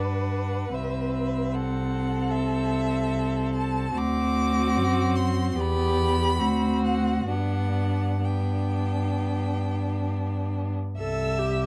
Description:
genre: classical, slow romantic movement for string quartet.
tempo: 62-78 BPM.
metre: 4/4.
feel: rubato.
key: G major.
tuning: A4 = 440 Hz.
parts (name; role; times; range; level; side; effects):
rich violin; melody; 0.0-11.7 s; E5 to E6; -35 LUFS; equal; none.
rich violin; second line; 0.0-11.7 s; D4 to E5; -34 LUFS; equal; none.
warm viola; accompaniment; 0.0-11.7 s; B3 to A4; -32 LUFS; equal; none.
rich cello; bass; 0.0-11.7 s; C2 to G2; -29 LUFS; equal; none.
room: light reverb.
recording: dark, warm production.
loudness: -26 LUFS.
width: mono.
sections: 0.0-11.0 A section.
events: none.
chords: 0.0 G; 0.8 Am/C; 4.0 D7; 5.6 Em; 6.4 D7; 7.3 G; 11.0 Am/C.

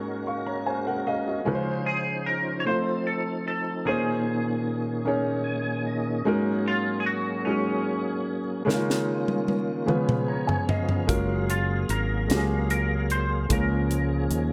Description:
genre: slow gospel.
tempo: 50 BPM (dotted quarters).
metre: 6/8.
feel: straight.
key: Db major.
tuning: A4 = 444 Hz.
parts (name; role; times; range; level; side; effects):
warm grand piano; accompaniment; 0.0-14.5 s; Ab2 to Db6; -30 LUFS; equal; none.
tonewheel organ; sustained chords; 0.0-14.5 s; Bb2 to Ab5; -32 LUFS; equal; slow rotary speaker, overdrive, chorus vibrato.
clean electric guitar; melody; 1.9-14.5 s; Db4 to Db5; -33 LUFS; equal; analog chorus.
crisp fusion drum kit; drums; 8.7-14.5 s; hi-hat, kick drum, snare drum, toms; -30 LUFS; equal; none.
fingered electric bass; bass; 11.1-14.5 s; Gb1 to Eb2; -29 LUFS; equal; none.
room: light reverb, studio reverb.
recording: none.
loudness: -26 LUFS.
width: mono.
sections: 0.0-14.5 A section.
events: grand piano fill 0.3-1.5, 9.9-11.1; tonewheel organ fill 5.1-6.3, 9.9-11.1; drum fill 8.7-11.1.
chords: 0.0 Ab9sus4; 1.5 Dbmaj9; 2.7 F7; 3.9 Bbm11; 6.3 Ab9sus4; 8.7 Db69; 9.9 Db7; 11.1 Gbmaj9; 13.5 Db6.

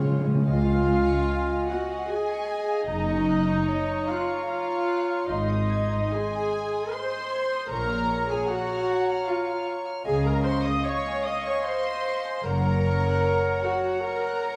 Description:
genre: cinematic.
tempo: 76 BPM.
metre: 3/4.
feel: rubato.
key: Db major.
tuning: A4 = 440 Hz.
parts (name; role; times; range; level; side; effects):
dark studio violin section; second line; 0.0-14.6 s; Db4 to Eb6; -37 LUFS; equal; none.
warm studio viola section; accompaniment; 0.0-14.6 s; Ab3 to Eb5; -30 LUFS; equal; none.
warm studio cello section; bass; 0.0-13.1 s; Db2 to Db3; -34 LUFS; equal; none.
warm studio violin section; melody; 0.5-14.6 s; Eb5 to Ab6; -45 LUFS; equal; none.
silver concert flute; second line; 0.5-14.6 s; F5 to C6; -38 LUFS; equal; none.
warm clarinet; second line; 0.5-14.6 s; Db5 to Eb5; -35 LUFS; equal; none.
rich studio double bass section; bass; 0.5-13.1 s; Gb1 to Db2; -32 LUFS; equal; none.
room: moderate concert hall reverb, RT60 1.8 s.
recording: dark, warm production.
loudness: -26 LUFS.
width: mono.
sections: 0.5-14.6 A section.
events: none.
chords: 0.5 Dbadd9; 2.9 Gb; 5.3 Ab; 7.7 Bbm; 10.1 Dbadd9; 12.4 Gb.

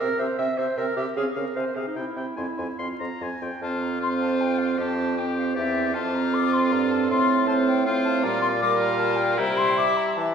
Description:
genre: quick classical-period movement for wind quintet.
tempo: 155 BPM.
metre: 3/4.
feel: rubato.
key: F minor, F major from 3.6 s.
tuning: A4 = 440 Hz.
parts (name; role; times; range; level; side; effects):
silver concert flute; melody; 0.0-10.3 s; E5 to D6; -28 LUFS; left 6 dB; none.
bright oboe; second line; 0.0-10.3 s; E4 to C6; -30 LUFS; left 4 dB; none.
warm French horn; accompaniment; 0.0-10.3 s; G3 to C4; -26 LUFS; right 5 dB; none.
warm clarinet; accompaniment; 0.0-10.3 s; Eb4 to G5; -29 LUFS; right 2 dB; none.
clear bassoon; bass; 0.0-10.3 s; E2 to E3; -29 LUFS; equal; none.
room: wet scoring stage reverb, RT60 1.6 s.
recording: heard from further back in the room, vinyl crackle.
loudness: -21 LUFS.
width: side -7 dB against mid.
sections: 0.0-3.6 A section; 3.6-10.3 A section.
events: none.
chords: 0.0 C; 1.2 Dbmaj7; 1.6 Fm/C; 2.0 C; 2.4 Fm; 3.6 F5; 4.8 C/F; 5.9 F; 7.1 F/A; 8.2 Gm7/Bb; 9.4 C.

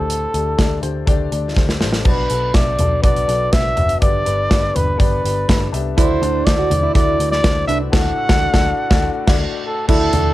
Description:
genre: piano-driven pop.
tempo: 123 BPM.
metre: 4/4.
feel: straight.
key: unclear.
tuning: A4 = 441 Hz.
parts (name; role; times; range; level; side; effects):
breathy trumpet; melody; 0.0-10.3 s; A4 to F#5; -20 LUFS; equal; none.
dark baby grand piano; accompaniment; 0.0-10.3 s; G2 to E5; -24 LUFS; left 9 dB; cassette tape.
vintage muted picked electric bass; bass; 0.0-10.3 s; F#1 to D2; -22 LUFS; equal; none.
modern studio drum kit; drums; 0.1-10.2 s; crash cymbal, hi-hat, kick drum, snare drum, toms; -17 LUFS; equal; cassette tape.
fingerpicked plugged-in steel-string acoustic guitar; riff; 6.0-10.3 s; D4 to F#4; -22 LUFS; right 10 dB; cassette tape.
room: light reverb.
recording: home recording on cassette.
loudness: -14 LUFS.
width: side -15 dB against mid.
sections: 0.0-2.1 A section; 2.1-9.9 B section.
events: drum fill 1.6-2.1; band accent 7.9-9.9.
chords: 0.0 D7sus4; 2.1 Bm; 4.0 G; 6.0 D.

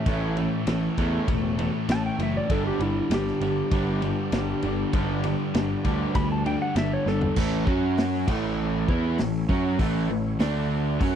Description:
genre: classic rock.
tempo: 99 BPM.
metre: 4/4.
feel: straight.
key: A mixolydian.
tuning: A4 = 439 Hz.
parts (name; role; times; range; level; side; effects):
clean lap steel guitar; melody; 0.0-7.4 s; E4 to B5; -31 LUFS; equal; tape echo.
overdriven tonewheel organ; sustained chords; 0.0-11.2 s; A3 to D#5; -41 LUFS; equal; none.
crunchy overdriven guitar; riff; 0.0-11.2 s; G2 to F#4; -33 LUFS; right 1 dB; none.
overdriven electric guitar; riff; 0.0-11.2 s; A2 to F#4; -31 LUFS; left 13 dB; none.
overdriven semi-hollow guitar; riff; 0.0-11.2 s; G2 to F#4; -30 LUFS; right 12 dB; none.
fuzz picked electric bass; bass; 0.1-11.2 s; E1 to F#2; -27 LUFS; equal; overdrive.
vintage drum kit; drums; 0.1-11.2 s; crash cymbal, hi-hat, kick drum, ride cymbal, snare drum, toms; -27 LUFS; equal; none.
room: little or no reverb.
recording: dry, close 1970s-style studio recording.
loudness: -22 LUFS.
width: side -9 dB against mid.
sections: 0.0-7.4 A section; 7.4-11.2 B section.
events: electric slide guitar solo 0.0-7.4; drum fill 7.1-7.4.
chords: 0.0 A; 2.5 G; 7.4 A5; 7.7 F#5; 8.3 A; 10.4 D5.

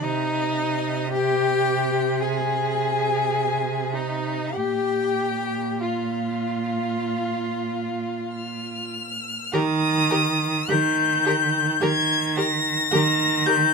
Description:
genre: classical, slow romantic movement for string quartet.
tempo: 46-56 BPM.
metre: 4/4.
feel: rubato.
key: Eb major.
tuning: A4 = 440 Hz.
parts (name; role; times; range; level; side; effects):
rich violin; melody; 0.0-13.7 s; Eb5 to Bb6; -25 LUFS; left 6 dB; none.
rich violin; second line; 0.0-13.6 s; Eb4 to Bb4; -27 LUFS; left 6 dB; none.
warm viola; accompaniment; 0.0-13.5 s; Eb4 to Ab4; -29 LUFS; equal; none.
warm cello; bass; 0.0-13.7 s; Bb2 to Eb3; -25 LUFS; right 5 dB; none.
room: light reverb.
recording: minimal, uncompressed stereo recording.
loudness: -21 LUFS.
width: side -4 dB against mid.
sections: 0.0-9.5 A section; 9.5-13.7 B section.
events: none.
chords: 0.0 Ab/C; 4.6 Bb5; 9.5 Eb.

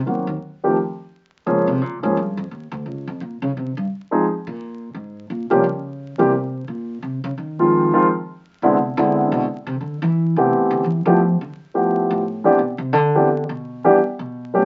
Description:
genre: jazz.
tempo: 173 BPM.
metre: 4/4.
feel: swing 62% on 8ths.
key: A minor from 9.8 s.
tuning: A4 = 441 Hz.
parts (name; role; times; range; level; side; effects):
upright bass; bass; 0.0-14.6 s; Db2 to F3; -25 LUFS; equal; none.
dark concert grand piano; melody; 0.1-14.7 s; D3 to Ab4; -19 LUFS; equal; none.
room: moderate studio reverb, RT60 0.6 s.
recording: very old 78 rpm record, vinyl crackle, nothing above 7.8 kHz.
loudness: -20 LUFS.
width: mono.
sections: 0.0-9.8 A section; 9.8-14.7 A section.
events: upright bass solo 0.0-14.7.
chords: 0.1 Cm7b5; 0.8 N.C.; 1.5 Bbm7; 2.8 Db6; 3.5 C5; 4.2 N.C.; 5.6 G(b5, no3); 6.3 Bbsus2; 7.0 Fm7; 8.4 E7b13; 9.8 Am9; 11.2 G13; 12.6 Cmaj7sus2 (rootless); 14.0 N.C..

